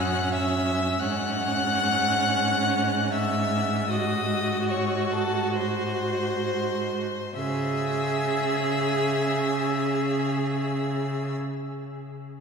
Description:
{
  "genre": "classical, slow romantic movement for string quartet",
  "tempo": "32-46 BPM",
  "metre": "4/4",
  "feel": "rubato",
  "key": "C# minor",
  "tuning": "A4 = 440 Hz",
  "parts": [
    { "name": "rich violin", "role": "melody", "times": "0.0-11.3 s", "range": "A5 to F#6", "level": "-30 LUFS", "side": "left 6 dB", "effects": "none" },
    { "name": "rich violin", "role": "second line", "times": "0.0-11.3 s", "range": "A4 to F#5", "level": "-31 LUFS", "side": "left 1 dB", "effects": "none" },
    { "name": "rich viola", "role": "accompaniment", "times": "0.0-11.3 s", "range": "C#4 to G#4", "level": "-28 LUFS", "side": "right 3 dB", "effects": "none" },
    { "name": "clear cello", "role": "bass", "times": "0.0-11.3 s", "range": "F#2 to C#3", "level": "-28 LUFS", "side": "right 2 dB", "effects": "none" }
  ],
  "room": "wet cathedral reverb, RT60 5.6 s",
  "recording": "recorded in a church or concert hall",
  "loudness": "-23 LUFS",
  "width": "side -5 dB against mid",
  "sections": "0.0-7.4 A section; 7.4-12.4 B section",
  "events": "slowing down 0.0-7.4",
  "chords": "0.0 D#m7/F# (rootless); 1.0 G#7sus4; 3.9 G#7; 7.4 C#m",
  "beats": "| 1.01 2.41 3.91 5.56 | 7.37 9.07 10.82"
}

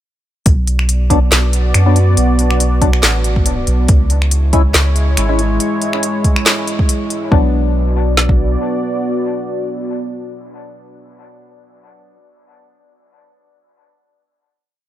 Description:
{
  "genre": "deep dubstep",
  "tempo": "140 BPM",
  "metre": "4/4",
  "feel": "swing 55% on 16ths, half-time",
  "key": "B dorian",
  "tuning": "A4 = 440 Hz",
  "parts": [
    { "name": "dark analog pad", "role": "sustained chords", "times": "1.0-11.5 s", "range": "G#3 to D5", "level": "-20 LUFS", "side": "right 1 dB", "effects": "chorus" },
    { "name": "soft dub sub bass", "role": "bass", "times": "0.5-8.6 s", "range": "G#1 to F#2", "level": "-14 LUFS", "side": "equal", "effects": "none" },
    { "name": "deep house drum kit", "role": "drums", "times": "0.5-8.4 s", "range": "kick drum, snare drum", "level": "-13 LUFS", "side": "equal", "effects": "none" },
    { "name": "deep house drum kit", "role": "drums", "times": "0.5-7.2 s", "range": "finger snaps, handclaps, hi-hat, snare drum", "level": "-17 LUFS", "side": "equal", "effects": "none" },
    { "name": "percussive organ stab", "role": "stabs", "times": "1.1-12.2 s", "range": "F#3 to E4", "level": "-22 LUFS", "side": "left 3 dB", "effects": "analog chorus, dub echo" }
  ],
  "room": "little or no reverb",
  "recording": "none",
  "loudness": "-12 LUFS",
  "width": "side -12 dB against mid",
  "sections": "0.5-7.3 drop; 7.3-10.7 final chord",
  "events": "drop 0.5-7.3",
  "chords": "0.5 Bm; 3.9 C#m; 7.3 Bm",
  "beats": "| 0.46 0.89 1.32 1.75 | 2.17 2.60 3.03 3.46 | 3.89 4.32 4.75 5.17 | 5.60 6.03 6.46 6.89 | 7.32 7.75 8.18 8.60 | 9.03 9.46 9.89 10.32"
}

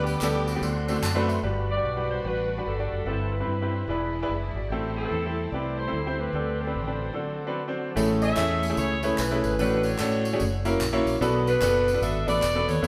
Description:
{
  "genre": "uptempo gospel",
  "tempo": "147 BPM",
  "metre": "4/4",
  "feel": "swing 63% on 8ths",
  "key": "G major, A major from 8.0 s",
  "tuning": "A4 = 440 Hz",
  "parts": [
    { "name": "mellow saxophone section", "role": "melody", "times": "0.0-12.9 s", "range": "A3 to E5", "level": "-31 LUFS", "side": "equal", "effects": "none" },
    { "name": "clear grand piano", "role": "accompaniment", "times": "0.0-12.9 s", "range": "G2 to A5", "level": "-30 LUFS", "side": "equal", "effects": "none" },
    { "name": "tonewheel organ", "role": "sustained chords", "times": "0.0-8.0 s", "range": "G3 to D6", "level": "-41 LUFS", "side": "equal", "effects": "slow rotary speaker" },
    { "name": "fingered electric bass", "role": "bass", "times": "0.0-12.9 s", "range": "E1 to A2", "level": "-32 LUFS", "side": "equal", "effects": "none" },
    { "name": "tambourine and handclaps", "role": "percussion", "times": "0.1-1.4, 8.0-12.9 s", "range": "none", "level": "-38 LUFS", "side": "equal", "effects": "none" },
    { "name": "rich studio string section", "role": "sustained chords", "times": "1.4-8.0 s", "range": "F#3 to F#4", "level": "-43 LUFS", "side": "equal", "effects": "none" }
  ],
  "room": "wet stone room reverb, RT60 1.3 s",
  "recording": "band playing live in one room",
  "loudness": "-26 LUFS",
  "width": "mono",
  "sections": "0.0-1.4 A section; 1.4-8.0 B section; 8.0-12.9 A section",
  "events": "grand piano fill 0.8-1.4",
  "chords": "0.0 G/D; 0.6 D7; 1.4 Gmaj7; 3.1 Cmaj7/G; 3.9 E7; 4.7 Am7; 6.3 D7sus4; 7.2 D7; 8.0 Amaj7; 9.6 Dmaj7/A; 10.4 F#7; 11.2 Bm7",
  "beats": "0.22 0.62 1.03 | 1.44 1.84 2.25 2.66 | 3.07 3.48 3.88 4.29 | 4.70 5.11 5.52 5.93 | 6.34 6.75 7.15 7.56 | 7.97 8.38 8.78 9.19 | 9.59 10.00 10.40 10.81 | 11.21 11.62 12.02 12.43 | 12.83"
}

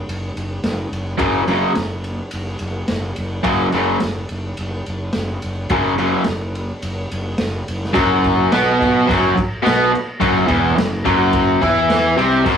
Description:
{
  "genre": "garage rock duo or trio",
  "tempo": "106 BPM",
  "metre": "4/4",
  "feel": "straight",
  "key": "unclear",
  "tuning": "A4 = 439 Hz",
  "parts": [
    { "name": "fuzz fingered electric bass", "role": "bass", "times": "0.1-12.6 s", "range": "E1 to E2", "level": "-24 LUFS", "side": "equal", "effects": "overdrive" },
    { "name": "crunchy breakbeat drum kit", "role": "drums", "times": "0.1-12.6 s", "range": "crash cymbal, kick drum, ride cymbal, snare drum", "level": "-25 LUFS", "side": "equal", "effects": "none" },
    { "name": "raw garage guitar", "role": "riff", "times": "1.2-12.6 s", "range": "E2 to E4", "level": "-14 LUFS", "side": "equal", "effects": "overdrive" }
  ],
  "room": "wet small room reverb, RT60 0.5 s",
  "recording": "rough rehearsal-room recording",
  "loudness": "-16 LUFS",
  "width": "side -8 dB against mid",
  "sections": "0.0-8.0 A section; 8.0-12.6 B section",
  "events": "none",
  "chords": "0.0 F#5",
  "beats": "0.07 0.63 | 1.19 1.75 2.32 2.88 | 3.45 4.01 4.57 5.14 | 5.70 6.26 6.83 7.39 | 7.95 8.52 9.08 9.64 | 10.20 10.77 11.33 11.89 | 12.45"
}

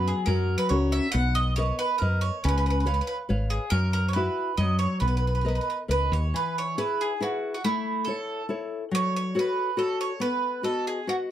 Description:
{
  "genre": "italian folk, Italian serenade",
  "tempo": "139 BPM",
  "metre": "3/4",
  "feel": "straight",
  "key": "B major, E major from 6.3 s",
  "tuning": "A4 = 440 Hz",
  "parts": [
    { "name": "bowl-back mandolin", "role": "melody", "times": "0.0-11.1 s", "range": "E4 to F#5", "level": "-28 LUFS", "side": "right 3 dB", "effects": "none" },
    { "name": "nylon-string guitar", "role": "accompaniment", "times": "0.0-11.3 s", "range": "E3 to E#5", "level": "-29 LUFS", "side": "left 2 dB", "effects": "none" },
    { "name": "woody fretless electric bass", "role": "bass", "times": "0.0-6.3 s", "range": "G#1 to F#2", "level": "-25 LUFS", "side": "equal", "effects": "none" }
  ],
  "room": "moderate small room reverb, RT60 0.5 s",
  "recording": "none",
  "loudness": "-24 LUFS",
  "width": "side -11 dB against mid",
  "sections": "0.0-6.3 A section; 6.3-11.3 B section",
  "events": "none",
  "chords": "0.3 F#; 1.1 Bmaj7; 2.4 C#7; 3.7 F#7sus4; 4.6 F#5; 5.0 Bmaj7; 6.3 E; 7.6 A; 8.9 F#m; 10.2 B",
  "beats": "0.28 0.71 | 1.15 1.58 2.02 | 2.45 2.87 3.30 | 3.73 4.15 4.59 | 5.02 5.45 5.89 | 6.34 6.78 7.21 | 7.64 8.07 8.49 | 8.92 9.35 9.77 | 10.20 10.64 11.07"
}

